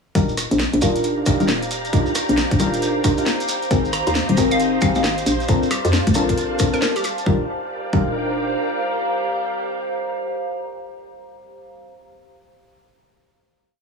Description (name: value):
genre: UK garage, two-step garage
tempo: 135 BPM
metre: 4/4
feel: swing 63% on 16ths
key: Eb major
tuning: A4 = 440 Hz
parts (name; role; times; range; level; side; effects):
- soft string machine; sustained chords; 0.6-11.6 s; Bb4 to Bb5; -30 LUFS; equal; ensemble chorus, sidechain pumping
- deep mellow chord stab; stabs; 0.2-12.3 s; C4 to Bb4; -23 LUFS; left 1 dB; chorus, dub echo
- hollow knocking FM bass; bass; 0.2-8.6 s; Eb1 to F2; -22 LUFS; left 2 dB; tube saturation
- electronic kick drum; drums; 0.2-8.1 s; none; -20 LUFS; equal; none
- garage drum kit; drums; 0.2-7.2 s; hi-hat, rim click, snare drum; -25 LUFS; equal; none
- shekere; percussion; 0.2-7.2 s; none; -30 LUFS; right 2 dB; none
- warbly tape-like pad; texture; 0.8-11.6 s; G4 to Bb5; -27 LUFS; right 1 dB; chorus, built-in reverb, sidechain pumping
- hollow square pluck; melody; 3.9-7.1 s; G4 to Bb5; -26 LUFS; left 1 dB; chorus, dub echo
room: moderate plate reverb, RT60 2.1 s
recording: studio ambience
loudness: -18 LUFS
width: side -5 dB against mid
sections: 0.2-7.3 groove; 7.3-10.8 final chord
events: none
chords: 0.2 Ebmaj9; 3.5 Abmaj9; 5.3 Bbmaj9; 7.3 Ebmaj9